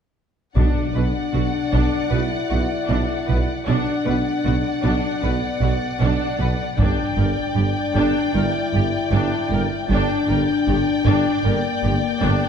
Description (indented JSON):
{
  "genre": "cinematic, epic orchestral film score",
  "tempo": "77 BPM",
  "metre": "4/4",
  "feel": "straight",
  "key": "B harmonic minor",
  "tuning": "A4 = 442 Hz",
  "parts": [
    { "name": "clear symphonic violin section", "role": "melody", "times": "0.6-12.5 s", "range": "F#5 to G5", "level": "-29 LUFS", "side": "left 3 dB", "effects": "none" },
    { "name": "rich symphonic violin section", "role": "second line", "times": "0.6-12.5 s", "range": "D5", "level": "-30 LUFS", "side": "left 3 dB", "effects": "none" },
    { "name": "rich symphonic viola section", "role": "accompaniment", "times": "0.6-12.5 s", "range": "D4 to B4", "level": "-28 LUFS", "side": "right 1 dB", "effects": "none" },
    { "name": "dark French horn section", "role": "sustained chords", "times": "0.6-12.5 s", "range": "Bb3 to E4", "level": "-24 LUFS", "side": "left 4 dB", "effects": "none" },
    { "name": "rich symphonic cello section", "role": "bass", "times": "0.6-12.3 s", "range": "G2 to B2", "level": "-26 LUFS", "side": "right 3 dB", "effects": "none" },
    { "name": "rich symphonic double bass section", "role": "bass", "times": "0.6-12.3 s", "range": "G1 to B1", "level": "-24 LUFS", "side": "right 2 dB", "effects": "none" },
    { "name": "warm tuba", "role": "bass", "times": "0.6-12.4 s", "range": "G1 to B1", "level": "-26 LUFS", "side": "right 3 dB", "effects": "none" },
    { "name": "taiko ensemble", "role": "drums", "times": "0.6-2.1, 6.8-8.3 s", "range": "none", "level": "-24 LUFS", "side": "equal", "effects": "none" },
    { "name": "timpani", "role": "percussion", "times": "0.6-1.7 s", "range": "B2", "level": "-29 LUFS", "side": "left 4 dB", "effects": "none" }
  ],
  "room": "moderate scoring stage reverb, RT60 1.9 s",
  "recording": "dark, warm production",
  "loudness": "-18 LUFS",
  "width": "side -7 dB against mid",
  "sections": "0.6-12.5 A section",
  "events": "none",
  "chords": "0.6 Bm; 6.8 Gm"
}